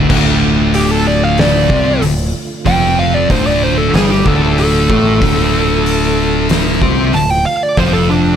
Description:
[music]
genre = stoner and doom metal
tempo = 94 BPM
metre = 4/4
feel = straight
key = D minor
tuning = A4 = 439 Hz
[part]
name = mellow tonewheel organ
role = sustained chords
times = 0.0-8.4 s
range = D3 to F4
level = -27 LUFS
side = right 4 dB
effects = none
[part]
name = thick fuzz guitar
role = riff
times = 0.0-8.4 s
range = D2 to C4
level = -15 LUFS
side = left 8 dB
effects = distortion
[part]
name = thick fuzz guitar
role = riff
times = 0.0-8.4 s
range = D2 to C4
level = -18 LUFS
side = right 13 dB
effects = distortion
[part]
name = growling fingered electric bass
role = bass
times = 0.0-8.4 s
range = D1 to C2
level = -18 LUFS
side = equal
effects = overdrive
[part]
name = oversized low-tuned drum kit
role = drums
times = 0.1-7.9 s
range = crash cymbal, hi-hat, kick drum, snare drum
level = -18 LUFS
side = equal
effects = none
[part]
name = fuzz lead guitar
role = melody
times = 0.7-8.4 s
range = D4 to A5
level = -16 LUFS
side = right 2 dB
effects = distortion, digital delay
[sound]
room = studio ambience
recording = none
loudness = -10 LUFS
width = side -8 dB against mid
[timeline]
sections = 0.1-8.4 A section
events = lead electric guitar solo 0.1-8.4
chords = 0.1 Dm

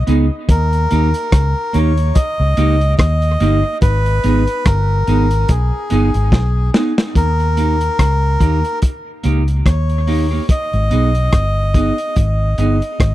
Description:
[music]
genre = dub reggae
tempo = 72 BPM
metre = 4/4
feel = swing 57% on 16ths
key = unclear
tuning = A4 = 440 Hz
[part]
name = melodica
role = melody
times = 0.0-13.1 s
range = G#4 to D#5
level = -21 LUFS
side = left 1 dB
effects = dub echo
[part]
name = clean electric guitar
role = accompaniment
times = 0.1-12.8 s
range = A#3 to G#4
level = -21 LUFS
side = right 3 dB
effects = spring reverb, dub echo
[part]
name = vintage muted fingered electric bass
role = bass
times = 0.1-13.1 s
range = G1 to D#2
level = -15 LUFS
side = equal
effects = none
[part]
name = crunchy breakbeat drum kit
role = drums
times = 0.1-13.1 s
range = hi-hat, kick drum, rim click, snare drum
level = -14 LUFS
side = equal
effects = none
[sound]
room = little or no reverb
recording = dry, close 1970s-style studio recording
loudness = -13 LUFS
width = side -15 dB against mid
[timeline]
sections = 0.0-7.2 A section; 7.2-13.1 B section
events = drum fill 6.3-7.2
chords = 0.5 D#; 3.8 G#m; 7.2 D#; 10.5 G#m

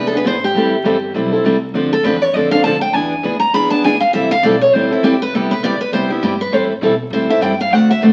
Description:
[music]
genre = acoustic string swing (jazz manouche)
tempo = 201 BPM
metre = 4/4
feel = swing 58% on 8ths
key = A minor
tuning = A4 = 440 Hz
[part]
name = picked steel-string acoustic guitar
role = melody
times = 0.0-8.1 s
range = E4 to B5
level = -19 LUFS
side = equal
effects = none
[part]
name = picked steel-string acoustic guitar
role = accompaniment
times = 0.0-8.1 s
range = C3 to A4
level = -17 LUFS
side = equal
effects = none
[part]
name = upright bass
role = bass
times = 0.0-8.1 s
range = G1 to B2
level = -30 LUFS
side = equal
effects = none
[sound]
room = wet studio reverb, RT60 0.9 s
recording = very old 78 rpm record, vinyl crackle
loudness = -15 LUFS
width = mono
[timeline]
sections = 0.0-5.3 A section; 5.3-8.1 A section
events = steel-string acoustic guitar solo 0.0-8.1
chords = 0.0 E7b13; 0.6 Am7; 1.7 Dm7; 2.9 E7; 4.1 Am7; 5.3 Cmaj7; 6.5 Am7

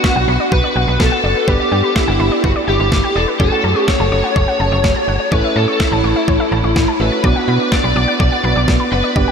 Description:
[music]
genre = synth-pop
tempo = 125 BPM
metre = 4/4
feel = straight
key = B minor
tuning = A4 = 440 Hz
[part]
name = lead guitar through a small cranked amp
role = melody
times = 0.0-9.3 s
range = E4 to D5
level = -16 LUFS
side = equal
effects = overdrive, ensemble chorus, ping-pong delay
[part]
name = warm baby grand piano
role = accompaniment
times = 0.0-9.3 s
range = A3 to G4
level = -22 LUFS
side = right 2 dB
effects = lush chorus
[part]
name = wide unison pluck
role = arpeggios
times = 0.0-9.3 s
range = B4 to D7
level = -22 LUFS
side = left 2 dB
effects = ping-pong delay
[part]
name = clean 12-bit digital drum machine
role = drums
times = 0.0-9.3 s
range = kick drum, snare drum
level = -19 LUFS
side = equal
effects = overdrive
[part]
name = slap-like FM bass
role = bass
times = 0.2-9.3 s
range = E1 to B2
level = -17 LUFS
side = equal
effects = none
[sound]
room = wet huge ambient reverb, RT60 7.8 s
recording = dreamy mix soaked in reverb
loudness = -12 LUFS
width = side -6 dB against mid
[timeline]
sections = 0.0-9.3 A section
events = none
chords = 0.0 Bm; 1.5 G; 3.4 F#m; 5.3 A; 7.2 Bm

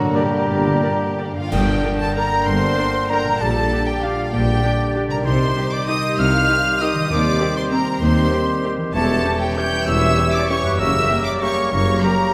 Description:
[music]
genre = classical, orchestral ballroom waltz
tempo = 167-213 BPM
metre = 3/4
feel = rubato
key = G minor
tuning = A4 = 440 Hz
[part]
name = rich symphonic violin section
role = melody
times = 0.0-12.3 s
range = F#4 to G6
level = -29 LUFS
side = equal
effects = none
[part]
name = clear clarinet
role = second line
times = 0.0-12.3 s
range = G4 to Bb4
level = -32 LUFS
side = equal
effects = none
[part]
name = clear symphonic violin section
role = second line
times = 0.0-12.3 s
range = F4 to G5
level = -32 LUFS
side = equal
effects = none
[part]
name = concert flute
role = second line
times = 0.0-12.3 s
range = F5 to G6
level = -26 LUFS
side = equal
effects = none
[part]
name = dark bassoon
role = accompaniment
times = 0.0-12.3 s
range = C#3 to E3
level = -30 LUFS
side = equal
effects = none
[part]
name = bright trombone section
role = sustained chords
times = 0.0-1.3 s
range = none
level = barely audible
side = none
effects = none
[part]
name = warm French horn section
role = sustained chords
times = 0.0-12.3 s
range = F#3 to Eb4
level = -29 LUFS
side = equal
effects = none
[part]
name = concert harp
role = arpeggios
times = 0.0-12.3 s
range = F#2 to D5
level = -30 LUFS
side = equal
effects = none
[part]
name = rich symphonic cello section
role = bass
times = 0.0-12.0 s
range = Eb2 to C3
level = -27 LUFS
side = equal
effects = none
[part]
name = clear oboe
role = second line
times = 0.1-12.3 s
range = G4 to G5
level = -32 LUFS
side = equal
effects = none
[part]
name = rich studio viola section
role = accompaniment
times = 0.1-12.1 s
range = A#3 to D5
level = -33 LUFS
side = equal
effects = none
[part]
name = clear trumpet section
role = stabs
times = 0.1-1.3 s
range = D5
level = -33 LUFS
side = equal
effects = none
[part]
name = mellow tuba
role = bass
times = 0.5-12.0 s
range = E1 to Eb2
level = -29 LUFS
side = equal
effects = none
[part]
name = rich symphonic double bass section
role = bass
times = 0.5-12.0 s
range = E1 to G2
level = -29 LUFS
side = equal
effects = none
[part]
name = clash cymbals and concert bass drum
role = percussion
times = 1.5-2.1 s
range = none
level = -31 LUFS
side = equal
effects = none
[sound]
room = wet scoring stage reverb, RT60 2.0 s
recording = none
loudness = -19 LUFS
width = mono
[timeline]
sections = 0.0-1.5 A section; 1.5-12.3 B section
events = band accent 1.5-1.8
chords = 0.0 Gm; 3.4 Gm/Bb; 5.3 Cm; 7.1 Cm/Eb; 8.9 C#dim/E; 10.8 F#7b9

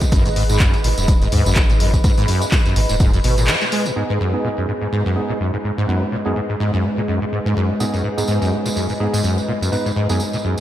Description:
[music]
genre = acid house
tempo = 125 BPM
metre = 4/4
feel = swing 56% on 16ths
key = G# minor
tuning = A4 = 442 Hz
[part]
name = acid bass, saw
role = riff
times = 0.0-10.6 s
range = F#2 to G#3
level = -20 LUFS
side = equal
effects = ensemble chorus, tape echo
[part]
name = electronic kick drum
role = drums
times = 0.0-3.1 s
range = none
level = -16 LUFS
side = equal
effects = overdrive
[part]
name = punchy analog drum machine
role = drums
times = 0.0-3.9 s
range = handclaps, hi-hat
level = -23 LUFS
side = equal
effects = none
[part]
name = tambourine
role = percussion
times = 0.0-3.9, 7.8-10.6 s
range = none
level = -30 LUFS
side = right 2 dB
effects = none
[part]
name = granular cloud pad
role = texture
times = 0.0-10.6 s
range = G#4 to B5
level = -28 LUFS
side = equal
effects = built-in reverb, ensemble chorus, sidechain pumping
[part]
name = warm sub bass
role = bass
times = 0.1-3.5 s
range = D#1 to D#2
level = -19 LUFS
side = equal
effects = tube saturation, sidechain pumping
[part]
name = dark analog pad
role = sustained chords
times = 4.0-10.6 s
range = G#3 to D#5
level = -24 LUFS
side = left 1 dB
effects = chorus, sidechain pumping
[part]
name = percussive organ stab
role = stabs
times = 4.0-10.2 s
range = B3 to B4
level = -26 LUFS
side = right 3 dB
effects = chorus, tape echo
[sound]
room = moderate plate reverb, RT60 1.6 s, digital ambience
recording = dreamy mix soaked in reverb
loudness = -16 LUFS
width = side -12 dB against mid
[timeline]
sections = 0.0-4.0 A section; 4.0-10.6 B section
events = break 3.5-4.0; band accent 3.5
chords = 0.0 G#m

